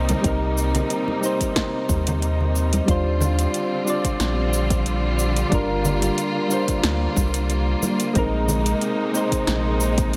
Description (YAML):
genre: sunset chillout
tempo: 91 BPM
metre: 4/4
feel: straight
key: Eb major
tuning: A4 = 441 Hz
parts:
  - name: soft electric-piano-like synth keys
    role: accompaniment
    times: 0.0-10.2 s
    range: G3 to D5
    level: -26 LUFS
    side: equal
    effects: chorus, tape echo
  - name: rich symphonic string section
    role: sustained chords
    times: 0.0-10.2 s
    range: C3 to F4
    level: -30 LUFS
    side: equal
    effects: vintage 12-bit sampler grit
  - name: round analog bass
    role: bass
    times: 0.0-10.2 s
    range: G1 to Eb2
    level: -25 LUFS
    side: equal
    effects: none
  - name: deep house drum kit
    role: drums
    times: 0.1-10.2 s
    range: cabasa, hi-hat, snare drum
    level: -29 LUFS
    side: equal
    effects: overdrive
  - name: congas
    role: percussion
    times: 0.1-8.6 s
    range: none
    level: -32 LUFS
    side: equal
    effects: none
  - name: electronic kick drum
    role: drums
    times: 0.2-10.1 s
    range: none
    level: -26 LUFS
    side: equal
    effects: overdrive
room: light reverb, digital ambience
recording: none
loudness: -22 LUFS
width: mono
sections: 0.0-2.9 A section; 2.9-10.2 B section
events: none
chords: 0.0 Cm7; 2.9 Ebmaj13; 5.5 Gm7; 8.2 Bb9sus4